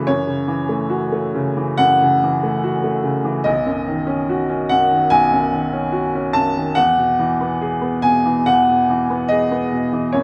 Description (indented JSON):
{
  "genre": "neoclassical minimalist piano",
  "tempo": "72 BPM",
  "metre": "4/4",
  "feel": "rubato",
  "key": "unclear",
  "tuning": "A4 = 441 Hz",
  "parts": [
    { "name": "clear upright piano", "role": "solo", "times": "0.0-10.2 s", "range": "B1 to A5", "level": "-18 LUFS", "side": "equal", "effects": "none" }
  ],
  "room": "moderate stone room reverb, RT60 1.1 s",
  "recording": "band playing live in one room",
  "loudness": "-18 LUFS",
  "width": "mono",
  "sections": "0.0-10.2 A section",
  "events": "none",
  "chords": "0.0 F#m7; 3.5 Badd9; 6.8 Eadd9"
}